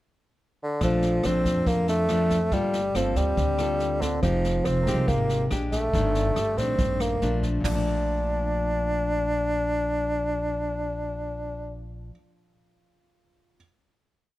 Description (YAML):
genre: bossa nova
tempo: 141 BPM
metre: 4/4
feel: straight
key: Bb major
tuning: A4 = 439 Hz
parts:
  - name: clear bassoon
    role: melody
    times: 0.6-11.8 s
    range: D3 to D4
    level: -26 LUFS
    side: equal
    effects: none
  - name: clear concert grand piano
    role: accompaniment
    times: 0.8-13.6 s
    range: C4 to Bb4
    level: -39 LUFS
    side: right 6 dB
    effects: none
  - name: nylon-string guitar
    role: accompaniment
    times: 0.8-12.2 s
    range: F2 to A4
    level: -29 LUFS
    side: left 2 dB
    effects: none
  - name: upright bass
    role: bass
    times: 0.8-12.1 s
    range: F1 to F2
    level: -29 LUFS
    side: equal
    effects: none
  - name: jazz brush drum kit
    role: drums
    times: 0.8-7.7 s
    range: hi-hat, kick drum, rim click, snare drum, toms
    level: -32 LUFS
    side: equal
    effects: none
room: light reverb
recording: none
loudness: -23 LUFS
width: side -16 dB against mid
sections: 0.0-0.8 pickup bar; 0.8-7.6 A section; 7.6-11.1 final chord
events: none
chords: 0.0 N.C.; 0.8 Bbmaj7; 2.5 Gm9; 4.2 Fm9; 5.5 Bb6; 5.9 Ebmaj7#11/G; 7.2 Bbmaj7